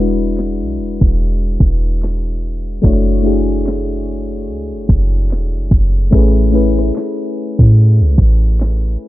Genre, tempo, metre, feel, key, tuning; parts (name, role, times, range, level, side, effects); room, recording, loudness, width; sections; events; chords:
contemporary R&B; 73 BPM; 4/4; swing 58% on 16ths; A major; A4 = 436 Hz
soft electric-piano-like synth keys; accompaniment; 0.0-9.1 s; G#3 to C#5; -19 LUFS; left 3 dB; chorus
soft 808-style bass; bass; 0.0-9.0 s; E1 to A2; -14 LUFS; equal
smooth R&B drum kit; drums; 0.4-8.8 s; handclaps, hi-hat, kick drum, rim click; -13 LUFS; equal; overdrive
little or no reverb; low-pass filter; -12 LUFS; side -16 dB against mid
0.0-9.1 A section
filter sweep 0.0-9.1
0.0 E7; 2.8 Dmaj7/F#; 6.1 Amaj7